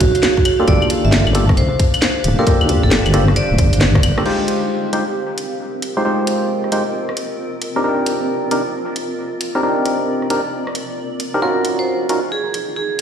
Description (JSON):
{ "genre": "UK garage, two-step garage", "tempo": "134 BPM", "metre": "4/4", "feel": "swing 64% on 16ths", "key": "F dorian", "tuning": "A4 = 440 Hz", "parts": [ { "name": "vibraphone with hard mallets", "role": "melody", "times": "0.0-4.2, 11.4-13.0 s", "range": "Gb4 to E5", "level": "-22 LUFS", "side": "right 3 dB", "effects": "tape echo" }, { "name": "deep soft wobble bass", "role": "bass", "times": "0.0-4.1 s", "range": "D1 to D2", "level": "-15 LUFS", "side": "equal", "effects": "chorus, sidechain pumping" }, { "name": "electronic kick drum", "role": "drums", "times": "0.0-4.0 s", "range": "none", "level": "-16 LUFS", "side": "equal", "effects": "none" }, { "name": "garage drum kit", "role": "drums", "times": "0.0-13.0 s", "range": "claves, crash cymbal, hi-hat, rim click, snare drum", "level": "-21 LUFS", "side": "equal", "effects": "none" }, { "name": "granular cloud pad", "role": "texture", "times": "0.0-13.0 s", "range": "C4 to F5", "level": "-24 LUFS", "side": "equal", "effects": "built-in reverb, sidechain pumping" }, { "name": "percussive organ stab", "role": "stabs", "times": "0.6-12.2 s", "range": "Ab3 to C5", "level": "-19 LUFS", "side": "equal", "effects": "chorus, tape echo" } ], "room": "light reverb", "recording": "played on a big sound system in a bare room, stone room reverb", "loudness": "-15 LUFS", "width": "side -8 dB against mid", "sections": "0.0-4.3 A section; 4.3-13.0 B section", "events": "drum fill 3.8-4.3", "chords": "0.5 Gm7; 4.3 Fm7; 7.6 Cm7; 11.4 Ebm7", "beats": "0.23 | 0.68 1.12 1.57 2.02 | 2.47 2.92 3.36 3.81 | 4.26 4.71 5.15 5.60 | 6.05 6.50 6.94 7.39 | 7.84 8.29 8.74 9.18 | 9.63 10.08 10.53 10.97 | 11.42 11.87 12.32 12.77" }